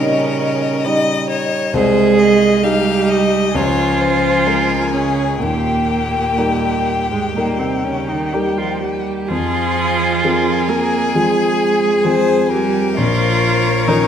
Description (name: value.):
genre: classical, slow romantic movement for piano quintet.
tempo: 64 BPM.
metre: 4/4.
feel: uneven beats, rubato.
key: unclear.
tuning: A4 = 440 Hz.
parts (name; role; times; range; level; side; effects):
clear violin; melody; 0.0-14.1 s; G4 to F5; -22 LUFS; left 7 dB; none.
rich cello; second line; 0.0-14.1 s; Ab2 to Bb3; -21 LUFS; right 6 dB; none.
warm violin; second line; 0.0-14.1 s; Db5 to Ab5; -23 LUFS; left 3 dB; none.
dark grand piano; accompaniment; 0.0-14.1 s; Bb1 to Eb5; -20 LUFS; left 1 dB; none.
warm viola; accompaniment; 0.0-14.1 s; Ab3 to Bb4; -19 LUFS; right 3 dB; none.
room: wet scoring stage reverb, RT60 1.4 s.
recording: none.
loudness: -14 LUFS.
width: side -8 dB against mid.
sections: 0.0-14.1 A section.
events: none.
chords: 0.0 Eb7/Bb; 1.7 Ab/C; 3.6 Bbm7/Db; 5.4 Eb; 9.3 Fm; 13.0 Bbm.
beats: 0.86 | 1.75 2.64 3.55 4.47 | 5.42 6.38 7.36 8.34 | 9.30 10.24 11.15 12.05 | 12.98 13.88.